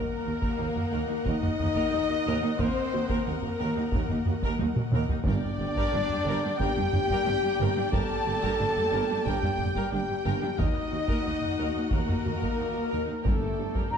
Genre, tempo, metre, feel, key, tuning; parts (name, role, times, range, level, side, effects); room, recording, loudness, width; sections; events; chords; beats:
cinematic, epic orchestral film score; 90 BPM; 4/4; straight; A4 = 440 Hz
dark symphonic violin section; melody; 0.0-14.0 s; G4 to A5; -39 LUFS; left 3 dB
rich studio violin section; second line; 0.0-14.0 s; G4 to A5; -39 LUFS; left 3 dB
rich symphonic viola section; accompaniment; 0.0-14.0 s; D4 to G5; -38 LUFS; right 2 dB
clear chamber string section; sustained chords; 0.0-14.0 s; G3 to G5; -38 LUFS; equal
mellow French horn section; sustained chords; 0.0-14.0 s; G3 to A4; -31 LUFS; left 4 dB
mellow trumpet; stabs; 0.0-14.0 s; G4 to A5; -35 LUFS; equal
clear symphonic double bass section; bass; 0.3-14.0 s; G1 to Eb2; -34 LUFS; right 3 dB
rich symphonic cello section; bass; 0.3-14.0 s; Eb2 to G2; -34 LUFS; right 2 dB
taiko ensemble; drums; 0.4-14.0 s; -30 LUFS; equal
timpani; percussion; 5.3-6.2, 13.3-14.0 s; G2; -35 LUFS; left 1 dB
concert flute; second line; 13.9-14.0 s; Bb5; -26 LUFS; left 2 dB
moderate scoring stage reverb, RT60 1.6 s; dark, warm production; -25 LUFS; side -7 dB against mid
0.0-14.0 A section
drum fill 4.6-5.3
0.0 Ebm; 5.3 Gm; 10.6 Ebm; 13.3 Gm
0.60 1.26 1.93 | 2.60 3.27 3.93 4.60 | 5.27 5.93 6.60 7.27 | 7.93 8.60 9.27 9.93 | 10.60 11.26 11.93 12.59 | 13.26 13.92